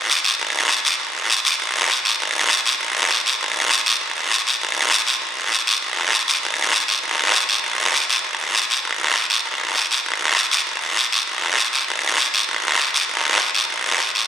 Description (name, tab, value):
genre	latin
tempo	198 BPM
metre	4/4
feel	straight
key	none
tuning	none
part	guiro	percussion	0.1-14.3 s	none	-16 LUFS	equal	none
room	wet cathedral reverb, RT60 6.9 s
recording	recorded in a church or concert hall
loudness	-16 LUFS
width	side -9 dB against mid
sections	0.0-5.8 A section; 5.8-14.3 B section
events	none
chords	none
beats	0.09 0.39 0.70 | 1.00 1.30 1.60 1.90 | 2.20 2.50 2.81 3.11 | 3.41 3.71 4.01 4.32 | 4.62 4.92 5.22 5.52 | 5.83 6.13 6.43 6.73 | 7.04 7.34 7.64 7.94 | 8.25 8.55 8.85 9.15 | 9.46 9.76 10.06 10.37 | 10.67 10.97 11.27 11.58 | 11.88 12.18 12.48 12.79 | 13.09 13.39 13.70 14.00